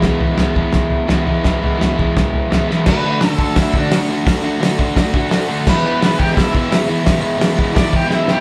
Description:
garage rock duo or trio; 171 BPM; 4/4; straight; E mixolydian; A4 = 440 Hz
crunchy overdriven guitar; riff; 0.0-8.4 s; D3 to F#4; -19 LUFS; equal
cloth-damped thuddy drum kit; drums; 0.0-8.4 s; crash cymbal, hi-hat, kick drum, snare drum, toms; -19 LUFS; equal
octave-fuzz lead guitar; melody; 2.9-8.4 s; D4 to D5; -23 LUFS; equal; distortion
light reverb; band playing live in one room; -16 LUFS; mono
0.0-2.9 A section; 2.9-8.4 B section
drum fill 2.7, 8.1
0.0 E; 2.9 D; 5.7 E

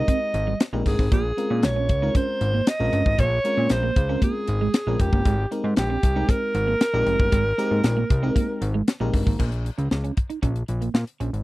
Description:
early-eighties boogie funk; 116 BPM; 4/4; straight; Bb dorian; A4 = 441 Hz
breathy alto saxophone; melody; 0.0-8.9 s; G4 to Eb5; -25 LUFS; right 1 dB; slapback echo
FM electric piano; accompaniment; 0.0-9.4 s; Ab3 to Bb4; -28 LUFS; left 2 dB; chorus
electric guitar at the edge of break-up; riff; 0.0-11.3 s; G3 to Eb4; -29 LUFS; right 6 dB; ensemble chorus
fat analog bass; bass; 0.0-11.4 s; F1 to Bb2; -24 LUFS; equal
tight funk drum kit; drums; 0.1-11.4 s; crash cymbal, hi-hat, kick drum, snare drum; -21 LUFS; equal
little or no reverb; dry, close 1970s-style studio recording; -20 LUFS; side -18 dB against mid
0.0-9.4 A section; 9.4-11.4 B section
0.0 Abmaj9; 1.1 Bbm9; 5.3 Abmaj9; 9.4 Bbm

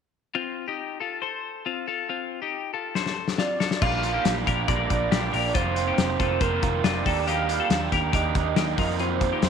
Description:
jangly indie pop; 139 BPM; 4/4; straight; F mixolydian; A4 = 441 Hz
twelve-string electric guitar; arpeggios; 0.3-9.5 s; C4 to D6; -28 LUFS; left 10 dB
loose indie drum kit; drums; 3.0-9.5 s; crash cymbal, hi-hat, kick drum, snare drum; -26 LUFS; left 3 dB
warm velvety synth lead; melody; 3.4-9.5 s; Bb4 to F5; -29 LUFS; right 4 dB; chorus, slapback echo
crunchy overdriven guitar; accompaniment; 3.8-9.5 s; F2 to G4; -28 LUFS; right 12 dB
vintage muted picked electric bass; bass; 3.8-9.5 s; F1 to F2; -29 LUFS; right 1 dB
light reverb, studio ambience; 1960s-style stereo with parts hard left and right; -23 LUFS; side -7 dB against mid
0.3-3.8 A section; 3.8-9.5 B section
drum fill 3.0-3.8
0.3 F7; 3.6 F6; 3.8 Bb6; 5.5 F7sus4; 7.1 Ebmaj7; 8.8 F7sus4

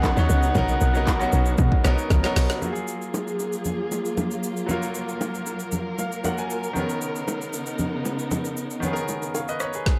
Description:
amapiano; 116 BPM; 4/4; straight; F# major; A4 = 440 Hz
breathy flute-like synth lead; melody; 0.0-2.1 s; F#5; -31 LUFS; equal; chorus, tape echo
bright baby grand piano; accompaniment; 0.0-10.0 s; D#3 to G#5; -31 LUFS; equal
warm studio string section; sustained chords; 0.0-9.8 s; C#3 to A#4; -32 LUFS; equal
deep house drum kit; drums; 0.0-10.0 s; handclaps, hi-hat, kick drum, rim click, shaker, snare drum; -29 LUFS; equal
bongos and congas; percussion; 0.0-9.5 s; -33 LUFS; equal
tight log drum bass; bass; 0.2-2.5 s; B1 to B2; -24 LUFS; equal
little or no reverb; dark, warm production; -25 LUFS; mono
0.0-2.6 A section; 2.6-10.0 B section
drop 0.0-2.6; drum fill 2.1-2.6; grand piano fill 5.7-6.8
0.0 Bmaj9; 2.6 F#maj9; 6.8 Bmaj9

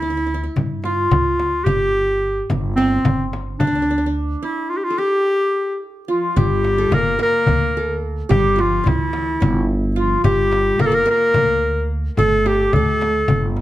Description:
Turkish makam ensemble; 217 BPM (eighths); 7/8; straight; G makam huseyni; A4 = 440 Hz
bright clarinet; melody; 0.0-13.6 s; C4 to Bb4; -18 LUFS; equal; plate reverb
qanun; second line; 0.0-13.6 s; C4 to Bb4; -25 LUFS; right 3 dB
upright bass; bass; 0.0-13.6 s; G1 to G2; -22 LUFS; equal
darbuka; percussion; 0.0-13.6 s; -24 LUFS; left 2 dB
frame drum; percussion; 0.6-13.4 s; -24 LUFS; left 2 dB
rich cello; second line; 6.1-13.5 s; E3-29c to Bb3; -27 LUFS; left 5 dB
light reverb; -16 LUFS; side -14 dB against mid
0.0-6.4 A section; 6.4-13.6 B section

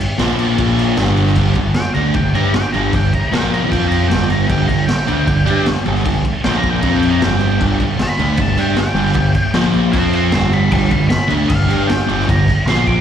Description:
garage rock duo or trio; 154 BPM; 4/4; straight; A4 = 441 Hz
raw garage drum kit; drums; 0.0-13.0 s; crash cymbal, kick drum, snare drum; -19 LUFS; equal
fuzz guitar; riff; 0.2-13.0 s; G2 to G4; -16 LUFS; equal; distortion, slapback echo
growling picked electric bass; bass; 0.2-13.0 s; G1 to G2; -19 LUFS; equal; overdrive, tube saturation
octave-fuzz lead guitar; melody; 1.7-13.0 s; F5 to D6; -22 LUFS; right 1 dB; distortion, slapback echo
light reverb; live gig heard through the venue's PA, recital hall reverb; -13 LUFS; side -9 dB against mid
0.0-1.4 A section; 1.4-13.0 B section
lead electric guitar solo 1.4-13.0
0.2 Bb5; 1.0 G5; 3.3 Bb5; 3.7 F5; 4.1 G5; 6.4 Bb5; 6.8 F5; 7.2 G5; 9.6 Bb5; 10.0 F5; 10.3 G

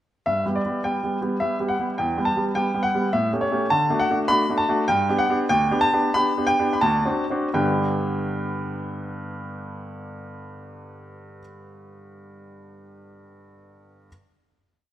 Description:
classical-period piano sonatina; 82-106 BPM; 3/4; straight; G major; A4 = 445 Hz
clear baby grand piano; solo; 0.3-14.1 s; D2 to B5; -21 LUFS; equal
moderate recital hall reverb, RT60 1.5 s; -20 LUFS; side -12 dB against mid
0.3-7.5 A section; 7.5-11.9 final chord
slowing down 2.8-7.5
0.3 G; 2.0 Em; 3.1 A7; 3.7 D; 4.9 G; 5.5 G/D; 6.8 D7; 7.5 G

